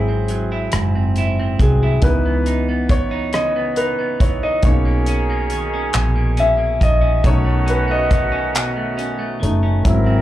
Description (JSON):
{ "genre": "slow six-eight R&B", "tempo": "46 BPM (dotted quarters)", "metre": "6/8", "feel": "straight", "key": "B major", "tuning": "A4 = 440 Hz", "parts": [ { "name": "semi-hollow electric guitar", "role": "second line", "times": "0.0-10.2 s", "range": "G#2 to E4", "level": "-24 LUFS", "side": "right 3 dB", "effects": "slapback echo" }, { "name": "warm concert grand piano", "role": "accompaniment", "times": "0.0-10.2 s", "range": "E3 to E5", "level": "-21 LUFS", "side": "left 1 dB", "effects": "plate reverb, slapback echo" }, { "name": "vintage muted fingered electric bass", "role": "bass", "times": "0.0-10.2 s", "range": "F#1 to C#2", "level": "-18 LUFS", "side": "equal", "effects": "none" }, { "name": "damped 70s drum kit", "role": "drums", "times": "0.3-10.1 s", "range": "handclaps, hi-hat, kick drum, rim click", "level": "-17 LUFS", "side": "equal", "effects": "none" }, { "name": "clear horn section", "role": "stabs", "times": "4.6-10.2 s", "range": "D#3 to A#4", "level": "-24 LUFS", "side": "right 2 dB", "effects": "plate reverb, slapback echo" } ], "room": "little or no reverb", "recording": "live gig heard through the venue's PA, club reverb", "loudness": "-15 LUFS", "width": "side -14 dB against mid", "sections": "0.0-10.2 A section", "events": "grand piano solo 0.0-10.2", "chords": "0.0 G#7b13; 2.0 C#m9; 4.6 Bmaj9; 7.2 B9", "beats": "0.72 | 2.03 3.33 | 4.63 5.94 | 7.24 8.55 | 9.85" }